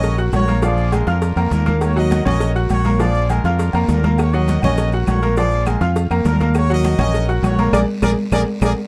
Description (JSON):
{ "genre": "latin, salsa", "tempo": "203 BPM", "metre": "4/4", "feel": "straight", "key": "Eb minor", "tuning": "A4 = 440 Hz", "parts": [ { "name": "bright trumpet section", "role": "melody", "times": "0.0-8.7 s", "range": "D4 to Eb5", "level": "-26 LUFS", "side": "equal", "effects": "none" }, { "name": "bright upright piano", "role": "accompaniment", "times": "0.0-8.7 s", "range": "F3 to Gb6", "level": "-24 LUFS", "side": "equal", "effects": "none" }, { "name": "modern bright fingered electric bass", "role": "bass", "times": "0.0-8.7 s", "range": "Bb1 to F2", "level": "-20 LUFS", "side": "equal", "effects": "none" }, { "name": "congas", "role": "percussion", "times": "0.0-8.7 s", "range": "none", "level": "-26 LUFS", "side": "equal", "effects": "none" }, { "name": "cowbell", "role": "percussion", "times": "0.0-8.7 s", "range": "none", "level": "-31 LUFS", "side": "equal", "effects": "none" }, { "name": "guiro", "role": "percussion", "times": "0.0-8.7 s", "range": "none", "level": "-44 LUFS", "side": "equal", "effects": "none" }, { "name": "maracas", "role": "percussion", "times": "0.0-8.7 s", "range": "none", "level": "-46 LUFS", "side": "equal", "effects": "none" }, { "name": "agogo bells and timbales", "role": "percussion", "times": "0.2-8.7 s", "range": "none", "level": "-32 LUFS", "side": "equal", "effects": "none" }, { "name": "claves", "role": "percussion", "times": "4.2-8.7 s", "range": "none", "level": "-36 LUFS", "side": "equal", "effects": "none" } ], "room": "light reverb", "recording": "dark, warm production", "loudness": "-17 LUFS", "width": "mono", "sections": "0.0-8.9 A section", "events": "drum fill 7.7-8.9; band accent 7.7-8.9", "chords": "0.0 Ebm7; 0.6 Bb7; 1.8 Ebm7; 3.0 Bb7; 4.2 Ebm7; 5.4 Bb7; 6.5 Ebm7; 7.7 Bb7" }